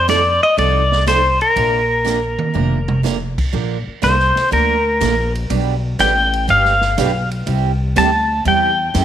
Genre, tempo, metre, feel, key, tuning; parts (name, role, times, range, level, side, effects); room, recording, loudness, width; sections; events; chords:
country, western swing; 122 BPM; 4/4; swing 69% on 8ths; Bb major; A4 = 440 Hz
pedal steel guitar; melody; 0.0-9.0 s; Bb4 to A5; -15 LUFS; left 1 dB
upright bass; bass; 0.0-9.0 s; F1 to Gb2; -19 LUFS; left 1 dB
picked steel-string acoustic guitar; accompaniment; 0.1-9.0 s; B2 to B4; -22 LUFS; right 11 dB
swinging big-band drum kit; drums; 0.1-9.0 s; crash cymbal, hi-hat, kick drum, ride cymbal, snare drum, toms; -25 LUFS; right 3 dB
light reverb, studio reverb; 1960s-style stereo; -14 LUFS; side -10 dB against mid
0.0-3.5 A section; 3.5-9.0 B section
drum fill 2.1-3.0; pedal steel guitar solo 3.5-9.0
0.0 F7; 1.6 Bbadd9; 3.5 Bb; 5.5 G; 7.5 C